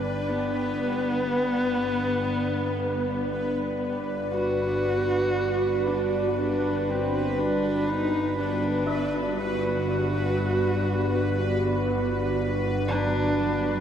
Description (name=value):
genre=dark ambient drone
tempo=60 BPM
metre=4/4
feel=straight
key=G major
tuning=A4 = 440 Hz
part: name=dark analog pad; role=sustained chords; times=0.0-13.8 s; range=G2 to G5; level=-29 LUFS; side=equal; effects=chorus
part: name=gamelan-type bronze metallophone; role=arpeggios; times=0.0-2.4, 8.9-13.8 s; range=F#3 to B3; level=-37 LUFS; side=right 3 dB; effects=tape echo
part: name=bowed-like drone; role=drone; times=0.0-13.8 s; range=G1 to G2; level=-30 LUFS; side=equal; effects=built-in reverb
part: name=bubbling stepped-filter texture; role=texture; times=0.0-13.8 s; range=B4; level=-35 LUFS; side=equal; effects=chorus, built-in reverb
part: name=rich horsehead fiddle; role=melody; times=0.3-13.8 s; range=B3 to F#4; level=-27 LUFS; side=equal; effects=tape echo
room=wet huge ambient reverb, RT60 8.6 s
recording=none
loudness=-23 LUFS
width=side -8 dB against mid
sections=0.0-13.8 A section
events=fade-in on bronze metallophone 0.0-13.8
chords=0.0 G